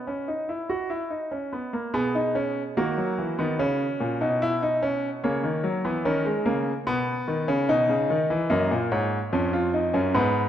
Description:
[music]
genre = classical, baroque-style 3-part fugue for grand piano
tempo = 73 BPM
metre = 4/4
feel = straight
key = B major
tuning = A4 = 443 Hz
[part]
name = clear concert grand piano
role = solo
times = 0.0-10.5 s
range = E#2 to D#5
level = -23 LUFS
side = equal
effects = none
[sound]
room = moderate scoring stage reverb, RT60 1.7 s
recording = none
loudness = -23 LUFS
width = side -10 dB against mid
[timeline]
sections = 0.0-1.9 A section; 1.9-10.5 B section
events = none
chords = 0.0 B; 3.6 N.C.; 5.2 F#/C#; 6.9 B; 8.5 F#

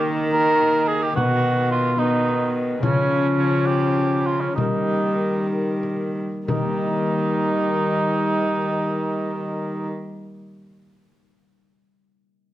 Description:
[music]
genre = classical, renaissance-style consort dance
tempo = 60-73 BPM (dotted quarters)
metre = 6/8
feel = straight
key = Eb mixolydian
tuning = A4 = 440 Hz
[part]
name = mellow tenor recorder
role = melody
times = 0.0-9.9 s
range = Bb4 to Db5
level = -30 LUFS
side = left 2 dB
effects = none
[part]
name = warm cor anglais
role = second line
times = 0.0-9.9 s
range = Db4 to Bb4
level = -24 LUFS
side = right 3 dB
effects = none
[part]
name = concert harp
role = accompaniment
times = 0.0-10.4 s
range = B2 to Bb4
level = -29 LUFS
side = left 5 dB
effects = none
[part]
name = warm viola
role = accompaniment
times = 0.0-9.9 s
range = Eb3 to G3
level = -26 LUFS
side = left 1 dB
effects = none
[part]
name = rich cello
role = bass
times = 0.0-9.9 s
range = B2 to Eb3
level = -25 LUFS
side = right 1 dB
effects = none
[part]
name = frame drum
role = percussion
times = 0.6-6.8 s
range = none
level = -27 LUFS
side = left 1 dB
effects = none
[sound]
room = wet stone room reverb, RT60 1.3 s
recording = worn, warbling old tape, cassette tape, warbly pitch drift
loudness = -19 LUFS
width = side -14 dB against mid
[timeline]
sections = 0.0-6.5 A section; 6.5-10.5 B section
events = slowing down 2.0-6.5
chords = 0.0 Eb; 1.2 B; 2.8 Db; 4.6 Eb

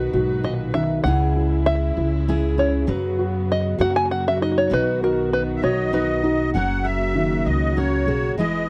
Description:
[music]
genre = acoustic folk duo or small band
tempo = 66 BPM (dotted quarters)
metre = 6/8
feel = straight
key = unclear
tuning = A4 = 443 Hz
[part]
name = fingerpicked steel-string acoustic guitar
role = accompaniment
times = 0.0-8.7 s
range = G#2 to B4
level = -28 LUFS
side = equal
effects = none
[part]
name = warm chamber string section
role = sustained chords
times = 0.0-8.7 s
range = B2 to B4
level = -33 LUFS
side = equal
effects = none
[part]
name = felt-muted upright piano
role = arpeggios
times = 0.0-8.4 s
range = D#3 to G#4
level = -28 LUFS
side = equal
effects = none
[part]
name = upright bass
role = bass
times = 0.0-8.7 s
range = E1 to F#2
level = -26 LUFS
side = equal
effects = none
[part]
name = open-back banjo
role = melody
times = 0.4-6.2 s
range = A#4 to G#5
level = -26 LUFS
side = equal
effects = slapback echo
[part]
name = musette accordion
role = second line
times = 5.6-8.7 s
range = C#5 to F#5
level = -28 LUFS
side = equal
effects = none
[sound]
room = little or no reverb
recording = dry, close 1970s-style studio recording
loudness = -21 LUFS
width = mono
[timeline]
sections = 0.0-6.5 A section; 6.5-8.7 B section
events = five-string banjo solo 0.0-6.5; accordion solo 6.5-8.7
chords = 0.0 B; 1.1 C#m; 2.9 F#sus4; 3.8 F#; 4.7 B; 6.5 F#

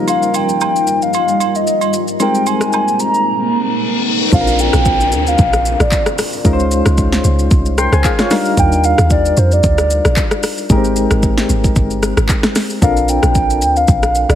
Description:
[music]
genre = amapiano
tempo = 113 BPM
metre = 4/4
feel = swing 55% on 16ths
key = Bb major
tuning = A4 = 444 Hz
[part]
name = soft electric-piano-like synth keys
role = accompaniment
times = 0.0-14.4 s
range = G3 to C6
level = -18 LUFS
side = left 2 dB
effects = chorus, tremolo
[part]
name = granular cloud pad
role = sustained chords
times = 0.0-4.3 s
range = G3 to Eb5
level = -20 LUFS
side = right 1 dB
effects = built-in reverb
[part]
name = hollow clarinet-like synth lead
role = melody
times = 0.1-14.4 s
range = C5 to Bb5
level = -16 LUFS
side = equal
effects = chorus, ping-pong delay
[part]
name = deep house drum kit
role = drums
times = 0.1-14.4 s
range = handclaps, hi-hat, kick drum, rim click, shaker, snare drum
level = -16 LUFS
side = equal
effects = overdrive
[part]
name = agogo bells and woodblock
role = percussion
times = 0.1-2.9 s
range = none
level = -23 LUFS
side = right 12 dB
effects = none
[part]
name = reverse cymbal and downlifter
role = sound effects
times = 3.5-8.6 s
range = none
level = -22 LUFS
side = left 3 dB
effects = none
[part]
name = deep log drum bass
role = bass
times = 4.3-14.4 s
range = G1 to F2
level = -15 LUFS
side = equal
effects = none
[sound]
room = light reverb, digital ambience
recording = heavily compressed radio sound, multiband compression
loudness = -11 LUFS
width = side -10 dB against mid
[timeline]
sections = 0.0-4.3 A section; 4.3-14.4 B section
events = drums muted 3.3-4.3; reverse cymbal 3.5-4.3; drop 4.3-14.4; synth keys fill 7.5-8.6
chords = 0.0 Ebadd9; 2.2 Abmaj9; 4.3 Bbadd9; 6.5 Dbmaj9; 8.3 Ebmaj9; 10.7 Abmaj9; 12.8 Bbmaj9

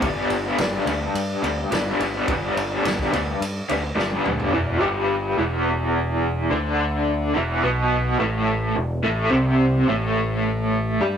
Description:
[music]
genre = psychedelic rock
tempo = 106 BPM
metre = 4/4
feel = straight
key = E minor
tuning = A4 = 440 Hz
[part]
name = raw garage guitar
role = riff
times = 0.0-11.2 s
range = E2 to G4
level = -21 LUFS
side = equal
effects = overdrive, tremolo
[part]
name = growling fingered electric bass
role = bass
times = 0.0-11.2 s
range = E1 to G2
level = -26 LUFS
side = equal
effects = overdrive
[part]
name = vintage drum kit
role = drums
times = 0.0-4.5 s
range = kick drum, ride cymbal, snare drum, toms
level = -30 LUFS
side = equal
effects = none
[sound]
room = moderate studio reverb, RT60 0.6 s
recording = rough rehearsal-room recording, warm saturation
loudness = -20 LUFS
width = side -8 dB against mid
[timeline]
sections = 0.0-4.5 A section; 4.5-11.2 B section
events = drum fill 4.0-4.5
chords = 0.0 G; 4.5 Em; 9.0 A5

